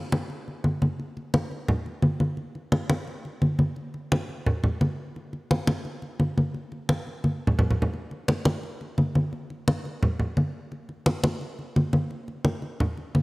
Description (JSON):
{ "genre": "latin", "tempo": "173 BPM", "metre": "4/4", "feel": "straight", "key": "none", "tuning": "none", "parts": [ { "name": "congas", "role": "percussion", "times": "0.1-13.2 s", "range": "none", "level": "-24 LUFS", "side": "equal", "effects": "none" } ], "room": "light reverb, small room ambience", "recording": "home recording on cassette", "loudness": "-24 LUFS", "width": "side -22 dB against mid", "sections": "0.0-7.9 A section; 7.9-13.2 B section", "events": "drum fill 7.2-7.9", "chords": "none" }